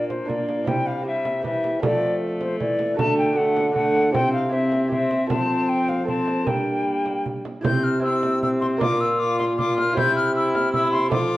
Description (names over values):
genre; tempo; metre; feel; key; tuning
classical, renaissance-style consort dance; 156 BPM; 3/4; straight; unclear; A4 = 442 Hz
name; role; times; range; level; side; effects
silver concert flute; melody; 0.0-11.4 s; C5 to G6; -24 LUFS; left 2 dB; none
lute; accompaniment; 0.0-11.4 s; Bb2 to F5; -27 LUFS; right 2 dB; none
rich viola; accompaniment; 0.0-11.4 s; G3 to F4; -26 LUFS; left 1 dB; none
clear trombone; bass; 0.0-11.4 s; Bb2 to G3; -26 LUFS; equal; none
frame drum; percussion; 0.1-11.3 s; none; -29 LUFS; right 3 dB; none
room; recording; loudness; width
wet stone room reverb, RT60 1.2 s; worn, warbling old tape, cassette tape, warbly pitch drift; -19 LUFS; side -16 dB against mid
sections
0.0-7.6 A section; 7.6-11.4 A section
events
none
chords
0.0 Bb; 0.7 C; 1.8 F; 3.0 D; 4.1 C; 5.3 F; 6.5 Gm; 7.6 C; 8.8 Bb; 10.0 C